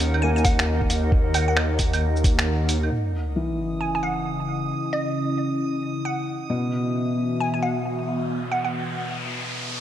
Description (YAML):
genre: future garage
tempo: 134 BPM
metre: 4/4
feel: swing 64% on 16ths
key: unclear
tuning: A4 = 440 Hz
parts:
  - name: felt-muted upright piano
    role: accompaniment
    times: 0.0-9.8 s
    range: B2 to Db4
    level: -29 LUFS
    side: left 2 dB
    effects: sidechain pumping, tape echo
  - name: warbly tape-like pad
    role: sustained chords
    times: 0.0-9.2 s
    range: Db3 to Gb5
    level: -28 LUFS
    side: equal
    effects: chorus, built-in reverb, vintage 12-bit sampler grit, sidechain pumping
  - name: swelling detuned saw bass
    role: bass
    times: 0.0-2.9 s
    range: Eb2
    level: -22 LUFS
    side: equal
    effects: sidechain pumping
  - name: lo-fi sampler-style drum kit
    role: drums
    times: 0.0-2.9 s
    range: claves, finger snaps, hi-hat, shaker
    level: -26 LUFS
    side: right 2 dB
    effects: low-pass filter on hats, studio ambience, low-pass filter on perc, low-pass filter on snare
  - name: glassy wavetable pluck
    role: melody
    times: 0.2-8.7 s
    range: Eb5 to Ab5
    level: -29 LUFS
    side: right 1 dB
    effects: chorus, cassette tape, analog delay
  - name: electronic kick drum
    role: drums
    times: 0.5-2.4 s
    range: none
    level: -22 LUFS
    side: equal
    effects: studio ambience
  - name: sub drop and riser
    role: sound effects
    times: 2.9-9.8 s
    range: none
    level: -31 LUFS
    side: equal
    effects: none
  - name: drifting glass-harmonics texture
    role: texture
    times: 3.4-9.2 s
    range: Eb6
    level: -36 LUFS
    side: right 7 dB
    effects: chorus, built-in reverb
room: moderate lush hall reverb, RT60 1.9 s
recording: dark, warm production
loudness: -21 LUFS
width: side -11 dB against mid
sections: 0.0-2.9 A section; 2.9-9.8 B section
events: break 2.5-2.9, 9.2-9.8; impact 2.9-4.7; filter sweep on ambient pad 2.9-9.8; riser 7.5-9.8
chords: 0.0 Ebm7; 2.9 Dbmadd9; 6.5 Esus2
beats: 0.23 0.68 | 1.12 1.57 2.02 2.47 | 2.91 3.36 3.81 4.26 | 4.70 5.15 5.60 6.05 | 6.50 6.94 7.39 7.84 | 8.29 8.73 9.18 9.63